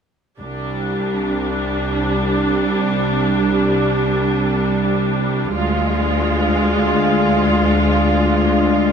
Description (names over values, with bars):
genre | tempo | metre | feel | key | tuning
cinematic | free time | none | none | unclear | A4 = 440 Hz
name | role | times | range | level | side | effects
rich symphonic viola section | accompaniment | 0.4-8.9 s | G3 to F4 | -19 LUFS | right 2 dB | none
deep rumbling drone | sustained chords | 1.1-8.9 s | G3 to D5 | -20 LUFS | left 1 dB | built-in reverb
rich symphonic cello section | bass | 0.4-8.9 s | C2 to D2 | -21 LUFS | equal | none
room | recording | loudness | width
moderate scoring stage reverb, RT60 1.4 s | none | -15 LUFS | side -7 dB against mid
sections
0.4-8.9 A section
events
none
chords
0.4 Csus2; 5.5 Ddim